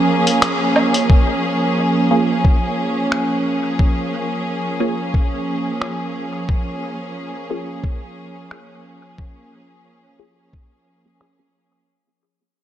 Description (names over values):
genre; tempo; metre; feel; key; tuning
ambient dub; 89 BPM; 4/4; swing 55% on 16ths; Bb minor; A4 = 440 Hz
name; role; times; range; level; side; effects
rich symphonic string section; sustained chords; 0.0-11.9 s; F3 to Ab4; -19 LUFS; right 1 dB; none
lo-fi sampler-style drum kit; drums; 0.3-11.4 s; finger snaps, hi-hat, woodblock; -22 LUFS; equal; low-pass filter on hats, low-pass filter on perc, low-pass filter on snare, dub echo
electronic kick drum; drums; 1.1-10.7 s; none; -15 LUFS; equal; none
filtered dub chord stab; stabs; 2.1-11.5 s; Bb3 to Ab4; -24 LUFS; right 2 dB; phaser, dub echo
room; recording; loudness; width
moderate lush hall reverb, RT60 2.8 s; none; -16 LUFS; side -11 dB against mid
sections
0.0-1.1 A section; 1.1-11.9 B section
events
band accent 0.4-0.8; fade-out 1.1-11.9; filter sweep on synth stab 1.1-11.9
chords
0.0 Bbm7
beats
0.42 | 1.09 1.77 2.44 3.12 | 3.79 4.46 5.14 5.81 | 6.49 7.16 7.84 8.51 | 9.18 9.86 10.53 11.21